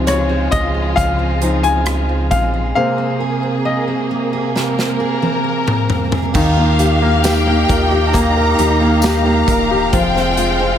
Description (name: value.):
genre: pop ballad.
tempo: 67 BPM.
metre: 4/4.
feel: straight.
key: Eb mixolydian.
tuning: A4 = 440 Hz.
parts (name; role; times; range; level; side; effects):
clear baby grand piano; accompaniment; 0.0-10.8 s; C3 to Ab5; -18 LUFS; left 3 dB; none.
warm studio string section; sustained chords; 0.0-10.8 s; C3 to F5; -20 LUFS; left 1 dB; none.
picked steel-string acoustic guitar; arpeggios; 0.0-10.8 s; F2 to Ab4; -22 LUFS; right 5 dB; ping-pong delay.
sub bass with octave; bass; 0.0-10.8 s; Eb1 to Eb2; -19 LUFS; equal; none.
modern studio drum kit; drums; 0.1-10.6 s; crash cymbal, hi-hat, kick drum, rim click, snare drum, toms; -21 LUFS; equal; none.
rich studio violin section; second line; 6.3-10.8 s; F5 to Bb5; -20 LUFS; equal; none.
tambourine; percussion; 6.3-10.6 s; none; -32 LUFS; left 4 dB; none.
room: light reverb, small room ambience.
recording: faint mains hum.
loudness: -13 LUFS.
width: side -9 dB against mid.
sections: 0.0-6.3 A section; 6.3-10.8 B section.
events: grand piano solo 0.0-6.3; drum fill 4.6-6.3.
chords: 0.0 Dbmaj7; 2.8 Abadd9/C; 6.3 Ebadd9; 9.9 Fmadd9.